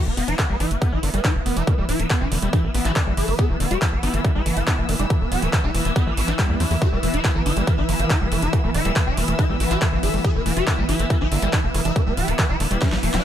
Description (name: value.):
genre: psychedelic trance.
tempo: 140 BPM.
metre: 4/4.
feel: straight.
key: E minor.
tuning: A4 = 440 Hz.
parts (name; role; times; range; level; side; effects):
swarming drone; sustained chords; 1.4-13.2 s; E3; -30 LUFS; right 1 dB; built-in reverb, sidechain pumping.
screaming distorted acid line; riff; 0.0-13.2 s; D3 to B3; -28 LUFS; moving between left 6 dB and right 7 dB; distortion, chorus, auto-pan, sidechain pumping, digital delay.
dark studio string section; texture; 0.0-13.2 s; E4 to E6; -30 LUFS; left 2 dB; sidechain pumping.
swarming rave lead; melody; 0.1-13.2 s; B3 to A4; -27 LUFS; equal; chorus, phaser, cassette tape, sidechain pumping, digital delay.
tight sequencer bass; bass; 0.1-13.2 s; D1 to E2; -24 LUFS; equal; none.
big-room dance drum kit; drums; 0.2-13.2 s; handclaps, hi-hat, snare drum; -27 LUFS; equal; none.
electronic kick drum; drums; 0.4-12.9 s; none; -21 LUFS; equal; none.
room: light reverb.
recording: none.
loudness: -18 LUFS.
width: side -10 dB against mid.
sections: 0.0-13.2 A section.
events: drum fill 12.8-13.2.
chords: 0.0 E5.